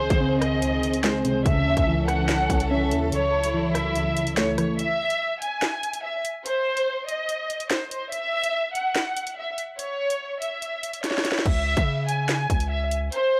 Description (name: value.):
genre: hip hop, drill.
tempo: 144 BPM.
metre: 4/4.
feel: half-time.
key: C# harmonic minor.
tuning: A4 = 444 Hz.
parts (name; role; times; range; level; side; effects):
warm studio violin section; melody; 0.0-13.4 s; B#4 to G#5; -28 LUFS; equal; low-pass filter, tape echo.
soft electric-piano-like synth keys; accompaniment; 0.0-4.8 s; C#2 to C#4; -27 LUFS; equal; chorus, phaser, low-pass filter.
warm symphonic string section; sustained chords; 0.0-4.8 s; D#3 to A4; -32 LUFS; equal; none.
hard-hitting 808-style bass; bass; 0.1-3.1, 11.5-13.1 s; B#1 to C#3; -29 LUFS; equal; none.
drill drum kit; drums; 0.1-13.2 s; crash cymbal, handclaps, hi-hat, kick drum, rim click, snare drum; -29 LUFS; equal; none.
room: little or no reverb.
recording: dry, gritty hardware recording, vinyl crackle.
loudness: -25 LUFS.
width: mono.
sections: 0.0-4.8 A section; 4.8-13.4 B section.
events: kick muted 3.1-4.8; break 4.8-11.5; drum fill 11.0-11.5.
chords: 0.0 G#/C#; 1.5 A/C#; 3.1 F#m7/C#; 4.8 N.C.; 11.5 C#m.